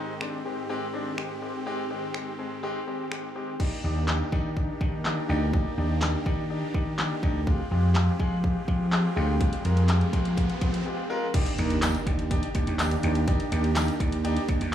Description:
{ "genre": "dance-pop", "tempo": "124 BPM", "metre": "4/4", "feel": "straight", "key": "Eb major", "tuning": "A4 = 443 Hz", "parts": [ { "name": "clear concert grand piano", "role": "accompaniment", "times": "0.0-14.7 s", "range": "Ab3 to Bb4", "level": "-32 LUFS", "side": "left 2 dB", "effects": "sidechain pumping, slapback echo" }, { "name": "supersaw chords", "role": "sustained chords", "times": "0.0-14.7 s", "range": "Ab2 to Ab4", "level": "-34 LUFS", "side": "right 1 dB", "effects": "sidechain pumping" }, { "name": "house drum kit", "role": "drums", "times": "0.2-14.7 s", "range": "crash cymbal, finger snaps, handclaps, hi-hat, kick drum, snare drum", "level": "-28 LUFS", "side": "equal", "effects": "none" }, { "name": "vintage slap bass", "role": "bass", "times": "3.8-14.7 s", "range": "D2 to F3", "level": "-26 LUFS", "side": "equal", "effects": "sidechain pumping" }, { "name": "riser and impact", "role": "sound effects", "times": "8.6-13.3 s", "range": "none", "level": "-37 LUFS", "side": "right 1 dB", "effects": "slapback echo" }, { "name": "tambourine", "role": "percussion", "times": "11.8-13.9 s", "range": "none", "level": "-44 LUFS", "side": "right 5 dB", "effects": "none" } ], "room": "little or no reverb", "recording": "live gig heard through the venue's PA, club reverb", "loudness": "-24 LUFS", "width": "side -10 dB against mid", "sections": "0.0-3.6 A section; 3.6-11.3 B section; 11.3-14.7 C section", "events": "riser 8.6-11.3; break 10.9-11.3; impact 11.3-13.3", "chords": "0.0 Abmaj7; 3.6 Ebmaj7; 7.5 Fmadd9; 11.3 Ebmaj7", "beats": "0.21 0.70 1.18 | 1.66 2.15 2.63 3.12 | 3.60 4.08 4.57 5.05 | 5.54 6.02 6.50 6.99 | 7.47 7.96 8.44 8.92 | 9.41 9.89 10.37 10.86 | 11.34 11.83 12.31 12.79 | 13.28 13.76 14.24 14.73" }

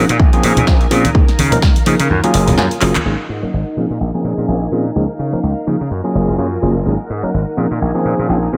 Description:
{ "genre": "filtered disco house", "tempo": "126 BPM", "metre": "4/4", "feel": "swing 57% on 16ths", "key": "Bb minor", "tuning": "A4 = 439 Hz", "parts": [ { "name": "overdriven tine electric piano", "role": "accompaniment", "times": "0.0-8.6 s", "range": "F3 to Bb4", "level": "-20 LUFS", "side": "equal", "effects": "phaser, sidechain pumping, low-pass filter" }, { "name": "string machine, full ensemble", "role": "sustained chords", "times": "0.0-8.6 s", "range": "Eb4 to Ab5", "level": "-26 LUFS", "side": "equal", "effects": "ensemble chorus, sidechain pumping, low-pass filter" }, { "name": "gritty slap bass", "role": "bass", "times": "0.0-8.6 s", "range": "Gb1 to Db3", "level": "-20 LUFS", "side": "equal", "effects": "overdrive, sidechain pumping, low-pass filter" }, { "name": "punchy analog drum machine", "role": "drums", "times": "0.1-3.0 s", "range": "handclaps, hi-hat, snare drum", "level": "-23 LUFS", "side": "equal", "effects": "overdrive, sidechain pumping on hats, low-pass filter on hats, small room ambience, low-pass filter on snare" }, { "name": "tube shaker and congas", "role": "percussion", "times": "0.1-3.0 s", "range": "none", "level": "-24 LUFS", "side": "equal", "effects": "sidechain pumping on perc, low-pass filter on perc" }, { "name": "electronic kick drum", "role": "drums", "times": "0.2-1.7 s", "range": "none", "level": "-14 LUFS", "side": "equal", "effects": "small room ambience" } ], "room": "light reverb", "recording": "none", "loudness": "-15 LUFS", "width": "mono", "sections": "0.0-3.1 A section; 3.1-8.6 B section", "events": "filter sweep 0.0-3.1; kick drops out 2.1-3.1; drum fill 2.8; band accent 2.9", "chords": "0.0 Bbm7; 1.1 Db69; 2.1 Gbmaj9; 3.1 Ab7sus2; 3.8 Bbm7; 5.0 Db69; 5.9 Gbmaj9; 6.9 Ab7sus2; 7.6 Bbm7", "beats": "0.20 0.67 | 1.15 1.62 2.10 2.58 | 3.05 3.53 4.01 4.48 | 4.96 5.43 5.91 6.39 | 6.86 7.34 7.82 8.29" }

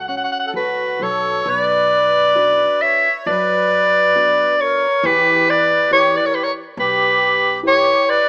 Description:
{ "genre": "fado-style ballad", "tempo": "68 BPM", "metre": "4/4", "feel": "rubato", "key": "B harmonic minor", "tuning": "A4 = 440 Hz", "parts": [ { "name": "warm soprano saxophone", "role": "melody", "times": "0.0-8.3 s", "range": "B4 to F#5", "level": "-14 LUFS", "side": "equal", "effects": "none" }, { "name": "nylon-string guitar", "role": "accompaniment", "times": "0.0-8.3 s", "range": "B2 to B4", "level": "-28 LUFS", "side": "equal", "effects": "none" }, { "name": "upright bass", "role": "bass", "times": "0.0-7.9 s", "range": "B1 to F#2", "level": "-34 LUFS", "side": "equal", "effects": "none" }, { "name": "accordion", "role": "second line", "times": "0.5-8.3 s", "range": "F#4 to C#5", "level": "-24 LUFS", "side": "right 1 dB", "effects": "light tremolo tuning" } ], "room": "light reverb", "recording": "rough home demo mix, small speaker sound", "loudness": "-13 LUFS", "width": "side -26 dB against mid", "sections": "0.0-1.5 A section; 1.5-8.3 B section", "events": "none", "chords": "0.0 F#m; 1.5 Bm; 5.0 Em", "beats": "0.54 | 1.46 2.35 3.25 4.15 | 5.03 5.91 6.77 7.64" }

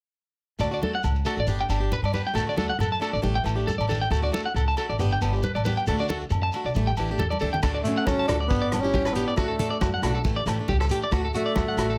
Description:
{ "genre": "highlife guitar band", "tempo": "137 BPM", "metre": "4/4", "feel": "swing 54% on 16ths", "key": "D major", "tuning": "A4 = 439 Hz", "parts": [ { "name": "picked plugged-in swing-style acoustic guitar", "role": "accompaniment", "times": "0.6-11.9 s", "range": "E3 to G4", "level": "-35 LUFS", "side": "equal", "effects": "plate reverb" }, { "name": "electric guitar at the edge of break-up", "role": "arpeggios", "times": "0.6-12.0 s", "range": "F#4 to A5", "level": "-31 LUFS", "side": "equal", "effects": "slapback echo, plate reverb" }, { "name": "upright bass", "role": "bass", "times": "0.6-12.0 s", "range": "G1 to G2", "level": "-30 LUFS", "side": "equal", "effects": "none" }, { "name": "agogo bells", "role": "percussion", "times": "0.6-11.9 s", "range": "none", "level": "-38 LUFS", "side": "equal", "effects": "none" }, { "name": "congas", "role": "percussion", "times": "0.6-11.7 s", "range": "none", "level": "-35 LUFS", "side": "equal", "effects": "none" }, { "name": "shekere", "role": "percussion", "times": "0.6-12.0 s", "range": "none", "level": "-37 LUFS", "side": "equal", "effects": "none" }, { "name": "vintage drum kit", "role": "drums", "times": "7.6-11.9 s", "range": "crash cymbal, hi-hat, kick drum, rim click", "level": "-31 LUFS", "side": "equal", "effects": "none" }, { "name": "mellow tenor saxophone", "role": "melody", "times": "7.8-12.0 s", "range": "A3 to D4", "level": "-29 LUFS", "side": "equal", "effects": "plate reverb" }, { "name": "nylon-string guitar", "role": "second line", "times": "7.9-12.0 s", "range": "C#4 to F#4", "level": "-37 LUFS", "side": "equal", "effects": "plate reverb" } ], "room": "moderate small room reverb, RT60 0.5 s", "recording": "none", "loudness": "-25 LUFS", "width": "mono", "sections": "0.6-7.6 A section; 7.6-12.0 B section", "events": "drum fill 7.3-7.6", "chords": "0.6 D; 1.5 G; 2.4 D; 3.2 A7sus4; 4.1 D; 5.0 G; 5.9 D; 6.7 A7sus4; 7.6 D; 8.5 G; 9.4 D; 10.3 A7sus4; 11.1 D", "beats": "| 0.60 1.04 1.48 1.92 | 2.36 2.80 3.24 3.68 | 4.12 4.55 4.99 5.43 | 5.87 6.31 6.75 7.19 | 7.63 8.06 8.50 8.94 | 9.38 9.82 10.25 10.69 | 11.13 11.57" }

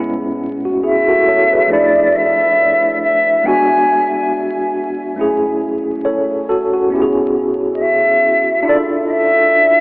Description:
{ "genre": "lo-fi hip hop", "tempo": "69 BPM", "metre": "4/4", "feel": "swing 58% on 16ths", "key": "A major", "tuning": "A4 = 442 Hz", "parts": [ { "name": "tine electric piano", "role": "accompaniment", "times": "0.0-9.8 s", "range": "E2 to C#5", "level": "-16 LUFS", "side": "equal", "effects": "fast tremolo, cassette tape, low-pass filter" }, { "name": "mellow concert flute", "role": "melody", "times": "0.8-9.8 s", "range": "D5 to G#5", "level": "-13 LUFS", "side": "equal", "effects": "low-pass filter, tape echo" } ], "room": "wet huge ambient reverb, RT60 7.7 s", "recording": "dreamy mix soaked in reverb, vinyl crackle, telephone sound", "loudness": "-12 LUFS", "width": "side -26 dB against mid", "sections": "0.0-9.8 A section", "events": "none", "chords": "0.0 Amaj9; 1.7 Dmadd9; 3.4 E7; 5.2 F#m7; 6.9 Amaj9; 8.7 Dmadd9", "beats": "0.83 1.70 2.57 | 3.44 4.31 5.18 6.05 | 6.92 7.79 8.66 9.53" }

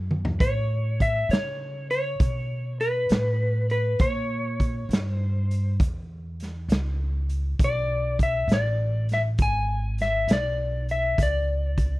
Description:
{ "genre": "slow blues", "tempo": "67 BPM (dotted quarters)", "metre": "12/8", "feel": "straight", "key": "unclear", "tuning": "A4 = 440 Hz", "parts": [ { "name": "upright bass", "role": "bass", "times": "0.0-12.0 s", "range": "G#1 to C#3", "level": "-26 LUFS", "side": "equal", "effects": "none" }, { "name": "raw garage drum kit", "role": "drums", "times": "0.1-11.9 s", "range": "hi-hat, kick drum, snare drum, toms", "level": "-24 LUFS", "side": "equal", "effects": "none" }, { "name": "electric slide guitar", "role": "melody", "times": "0.4-12.0 s", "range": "B4 to G#5", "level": "-27 LUFS", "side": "left 1 dB", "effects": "none" } ], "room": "little or no reverb", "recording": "dry, close 1970s-style studio recording", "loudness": "-22 LUFS", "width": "side -18 dB against mid", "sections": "0.0-12.0 A section", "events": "drum fill 0.1-0.4", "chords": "0.4 Aadd9; 4.0 A#dim7; 7.6 G#dim; 11.2 Bmadd9 (rootless)", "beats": "| 0.40 1.30 2.20 3.10 | 4.00 4.90 5.79 6.69 | 7.59 8.49 9.38 10.28 | 11.18" }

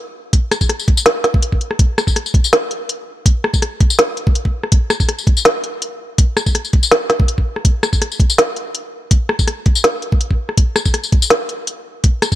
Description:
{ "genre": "drum and bass", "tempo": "164 BPM", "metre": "4/4", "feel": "swing 53% on 16ths, half-time", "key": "none", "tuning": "none", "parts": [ { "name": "electronic kick drum", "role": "drums", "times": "0.3-12.4 s", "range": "none", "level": "-13 LUFS", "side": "equal", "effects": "none" }, { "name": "organic electronic drum kit", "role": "drums", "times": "0.3-12.4 s", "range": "hi-hat, rim click, snare drum, tambourine", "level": "-16 LUFS", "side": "left 1 dB", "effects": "none" } ], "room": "little or no reverb", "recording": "none", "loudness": "-13 LUFS", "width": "side -14 dB against mid", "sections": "0.0-12.4 A section", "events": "none", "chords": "none", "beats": "| 0.33 0.70 1.06 1.43 | 1.79 2.16 2.52 2.89 | 3.26 3.62 3.99 4.35 | 4.72 5.09 5.45 5.82 | 6.18 6.55 6.92 7.28 | 7.65 8.01 8.38 8.74 | 9.11 9.48 9.84 10.21 | 10.57 10.94 11.31 11.67 | 12.04" }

